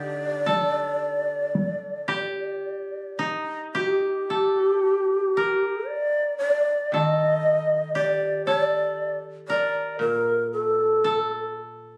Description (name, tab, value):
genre	japanese traditional, Japanese chamber music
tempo	54-60 BPM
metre	4/4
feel	rubato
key	D miyako bushi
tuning	A4 = 441 Hz
part	breathy bright long shakuhachi	melody	0.0-11.5 s	G4 to Eb5	-25 LUFS	equal	none
part	koto	second line	0.0-12.0 s	Eb4 to Bb4	-31 LUFS	equal	none
part	koto	accompaniment	0.0-12.0 s	Bb2 to G3	-36 LUFS	equal	none
part	solo taiko drums	percussion	0.5-2.3 s	none	-31 LUFS	equal	none
room	light reverb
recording	recorded on a phone in the room, club reverb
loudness	-24 LUFS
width	mono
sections	0.0-3.7 A section; 3.7-12.0 B section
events	none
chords	none